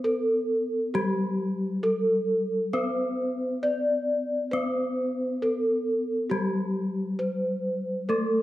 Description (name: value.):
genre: gamelan.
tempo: 67 BPM.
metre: 4/4.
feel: straight.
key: unclear.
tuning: A4 = 442 Hz.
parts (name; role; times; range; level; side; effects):
gamelan-type bronze metallophone; melody; 0.0-8.4 s; G4-35c to D5; -26 LUFS; equal; none.
gamelan-type bronze metallophone; accompaniment; 0.0-8.4 s; G3-35c to C4-45c; -29 LUFS; left 2 dB; none.
room: wet recital hall reverb, RT60 1.6 s.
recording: none.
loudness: -25 LUFS.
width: side -15 dB against mid.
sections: 0.0-8.4 A section.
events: none.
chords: none.